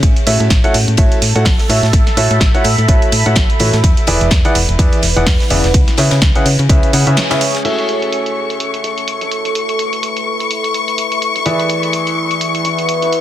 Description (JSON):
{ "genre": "piano house", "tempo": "126 BPM", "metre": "4/4", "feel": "swing 57% on 16ths", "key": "A major", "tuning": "A4 = 439 Hz", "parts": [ { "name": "solid FM bass", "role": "bass", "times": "0.0-7.2 s", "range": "E1 to C#3", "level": "-15 LUFS", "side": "equal", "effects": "sidechain pumping" }, { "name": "damped 70s drum kit", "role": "drums", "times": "0.0-13.2 s", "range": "hi-hat, ride cymbal, snare drum", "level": "-27 LUFS", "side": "left 2 dB", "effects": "high-pass filter on cymbals, low-pass filter on cymbals, high-pass filter on hats, low-pass filter on hats, high-pass filter on snare, low-pass filter on snare, high-pass filter on room, low-pass filter on room" }, { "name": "electronic kick drum", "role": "drums", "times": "0.0-6.8 s", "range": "none", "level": "-13 LUFS", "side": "equal", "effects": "none" }, { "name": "punchy analog drum machine", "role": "drums", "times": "0.0-13.2 s", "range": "crash cymbal, hi-hat, snare drum", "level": "-19 LUFS", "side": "right 2 dB", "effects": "low-pass filter on hats, low-pass filter on snare, low-pass filter on cymbals" }, { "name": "deep dark ambient pad", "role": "texture", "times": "0.0-13.2 s", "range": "C#4 to B5", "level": "-21 LUFS", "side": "right 1 dB", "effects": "chorus, built-in reverb, sidechain pumping" }, { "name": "warm grand piano", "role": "riff", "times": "0.3-13.2 s", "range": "C#3 to F#5", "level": "-18 LUFS", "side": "equal", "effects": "sidechain pumping, dub echo" }, { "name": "warm studio string section", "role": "sustained chords", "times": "7.6-13.2 s", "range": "C#6", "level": "-18 LUFS", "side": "left 6 dB", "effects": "sidechain pumping" } ], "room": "light reverb, studio reverb", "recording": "dense, heavily limited modern master", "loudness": "-11 LUFS", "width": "side -12 dB against mid", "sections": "0.0-7.6 A section; 7.6-13.2 B section", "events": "break 7.2-7.6; band accent 7.2", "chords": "0.0 A6; 3.8 E7; 5.7 C#m7; 7.6 A6; 11.5 E7" }